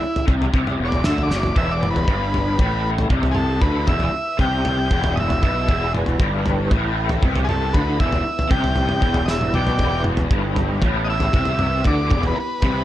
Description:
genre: psychedelic rock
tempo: 117 BPM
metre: 4/4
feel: straight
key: E minor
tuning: A4 = 440 Hz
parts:
  - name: overdriven combo organ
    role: melody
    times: 0.0-12.8 s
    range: E4 to G5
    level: -24 LUFS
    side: equal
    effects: slapback echo
  - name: raw garage guitar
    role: riff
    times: 0.0-12.8 s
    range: E2 to D3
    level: -23 LUFS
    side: left 1 dB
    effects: overdrive, rotary speaker
  - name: fuzz fingered electric bass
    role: bass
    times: 0.0-12.8 s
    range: E1 to D2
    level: -24 LUFS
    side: equal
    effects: overdrive
  - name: cloth-damped thuddy drum kit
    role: drums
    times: 0.2-12.8 s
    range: kick drum, snare drum, toms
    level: -21 LUFS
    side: equal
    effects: none
  - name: string machine, full ensemble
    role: sustained chords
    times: 1.6-12.8 s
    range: B3 to B4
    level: -33 LUFS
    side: right 3 dB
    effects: ensemble chorus
room: small room reverb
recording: none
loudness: -17 LUFS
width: side -13 dB against mid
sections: 0.0-12.8 A section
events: transistor combo organ solo 0.0-12.8; drum fill 1.3, 9.3-9.8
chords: 0.0 Em

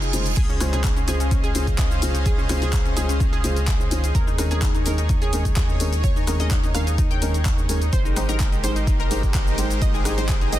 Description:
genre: progressive house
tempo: 127 BPM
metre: 4/4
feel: straight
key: unclear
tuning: A4 = 439 Hz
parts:
  - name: supersaw pad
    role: sustained chords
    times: 0.0-10.6 s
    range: Ab3 to F5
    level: -29 LUFS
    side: right 1 dB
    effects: sidechain pumping
  - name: analog pluck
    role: arpeggios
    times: 0.0-10.6 s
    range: Db4 to G5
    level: -31 LUFS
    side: left 1 dB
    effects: chorus, sidechain pumping, digital delay
  - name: round analog bass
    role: bass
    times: 0.0-10.6 s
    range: F1 to Eb2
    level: -24 LUFS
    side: equal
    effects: sidechain pumping
  - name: deep house drum kit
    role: drums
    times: 0.0-10.6 s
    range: crash cymbal, handclaps, hi-hat, rim click, shaker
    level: -30 LUFS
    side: left 2 dB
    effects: small room ambience
  - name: felt-muted upright piano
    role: stabs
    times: 0.1-10.6 s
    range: Ab2 to C5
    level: -29 LUFS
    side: left 1 dB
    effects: vintage 12-bit sampler grit, sidechain pumping, digital delay
  - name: electronic kick drum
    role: drums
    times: 0.4-10.4 s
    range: none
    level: -22 LUFS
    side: equal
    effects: small room ambience
room: little or no reverb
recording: dense, heavily limited modern master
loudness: -19 LUFS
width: side -13 dB against mid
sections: 0.0-10.6 A section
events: none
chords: 0.4 Dbmaj7; 4.1 Eb7sus4; 7.9 Abmaj7

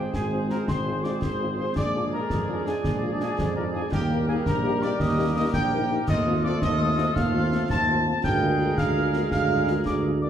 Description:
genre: military-style march for wind band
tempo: 111 BPM (dotted quarters)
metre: 6/8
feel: straight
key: unclear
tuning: A4 = 441 Hz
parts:
  - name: mellow trumpet section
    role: melody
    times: 0.0-10.3 s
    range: G4 to A5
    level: -30 LUFS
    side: right 2 dB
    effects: none
  - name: mellow wooden piccolo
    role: second line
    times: 0.0-10.3 s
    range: G5 to A6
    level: -31 LUFS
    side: left 3 dB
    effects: none
  - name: warm woodwind section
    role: second line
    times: 0.0-10.3 s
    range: F4 to D5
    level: -34 LUFS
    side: left 1 dB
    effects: none
  - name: mellow French horn section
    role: accompaniment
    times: 0.0-10.3 s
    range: Ab3 to Ab4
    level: -32 LUFS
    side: left 3 dB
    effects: none
  - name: clear trombone section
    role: sustained chords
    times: 0.0-10.3 s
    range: F3 to D4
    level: -33 LUFS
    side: right 2 dB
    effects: none
  - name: warm tuba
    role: bass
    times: 0.0-10.3 s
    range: Ab1 to F2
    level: -26 LUFS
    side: right 1 dB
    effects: none
  - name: concert snare drum, concert bass drum and clash cymbals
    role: drums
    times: 0.1-10.0 s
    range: none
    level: -30 LUFS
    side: left 1 dB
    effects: none
room: wet large studio reverb, RT60 0.9 s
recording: heard from further back in the room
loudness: -22 LUFS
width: side -9 dB against mid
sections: 0.0-10.3 A section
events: none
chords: 0.0 Fm/Ab; 1.8 Bb7; 3.9 Eb; 6.1 F7/Eb; 8.2 Bb7/D

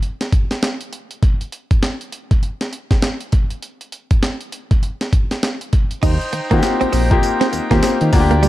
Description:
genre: R&B, new jack swing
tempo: 100 BPM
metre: 4/4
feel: swing 61% on 16ths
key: Eb major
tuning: A4 = 440 Hz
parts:
  - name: breakbeat sampler-style drum kit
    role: drums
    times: 0.0-8.5 s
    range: crash cymbal, hi-hat, kick drum, snare drum, tambourine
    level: -17 LUFS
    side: equal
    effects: none
  - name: hand-pumped harmonium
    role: sustained chords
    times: 6.0-8.5 s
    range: Eb4 to Bb5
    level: -24 LUFS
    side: right 1 dB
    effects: none
  - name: direct-recorded clean electric guitar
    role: riff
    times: 6.0-8.5 s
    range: G3 to Eb4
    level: -21 LUFS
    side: right 5 dB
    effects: wide subtle chorus
  - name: smooth synth bass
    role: bass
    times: 6.0-8.5 s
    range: Bb1 to Eb3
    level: -17 LUFS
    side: equal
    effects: none
  - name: clear baby grand piano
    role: accompaniment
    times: 6.5-8.5 s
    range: Bb3 to G4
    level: -18 LUFS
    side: left 4 dB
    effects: none
room: little or no reverb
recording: dark, warm production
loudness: -15 LUFS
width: side -15 dB against mid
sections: 0.0-6.0 A section; 6.0-8.5 B section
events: none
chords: 0.0 N.C.; 6.0 Eb6

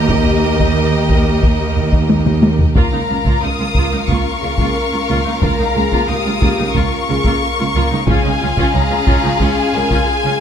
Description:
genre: cinematic, epic orchestral film score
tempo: 90 BPM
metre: 4/4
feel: straight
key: unclear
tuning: A4 = 440 Hz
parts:
  - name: clear symphonic violin section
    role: melody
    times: 0.0-10.4 s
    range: Eb5 to Eb6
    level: -22 LUFS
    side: left 4 dB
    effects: none
  - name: clear chamber violin section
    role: second line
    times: 0.0-10.4 s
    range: Ab4 to F5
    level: -23 LUFS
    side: left 2 dB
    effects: none
  - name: clear symphonic viola section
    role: accompaniment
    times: 0.0-10.3 s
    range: Bb3 to G4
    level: -24 LUFS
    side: right 1 dB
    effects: none
  - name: clear studio string section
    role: sustained chords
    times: 0.0-10.4 s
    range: Ab3 to F5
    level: -23 LUFS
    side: left 1 dB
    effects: none
  - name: rich symphonic cello section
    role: bass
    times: 0.0-10.3 s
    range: Db2 to Eb2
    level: -21 LUFS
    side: right 3 dB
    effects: none
  - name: warm symphonic double bass section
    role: bass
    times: 0.0-9.8 s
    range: Db2 to Eb2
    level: -21 LUFS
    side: right 3 dB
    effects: none
  - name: mellow French horn section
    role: sustained chords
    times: 0.1-10.4 s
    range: F4 to Bb4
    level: -25 LUFS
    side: left 4 dB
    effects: none
  - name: taiko ensemble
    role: drums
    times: 0.1-10.4 s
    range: none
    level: -17 LUFS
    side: equal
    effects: none
room: light reverb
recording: close, detailed microphones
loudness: -13 LUFS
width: side -8 dB against mid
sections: 0.0-10.4 A section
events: drum fill 2.1-2.8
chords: 0.0 Eb; 2.8 Bbm/Db; 8.1 Db

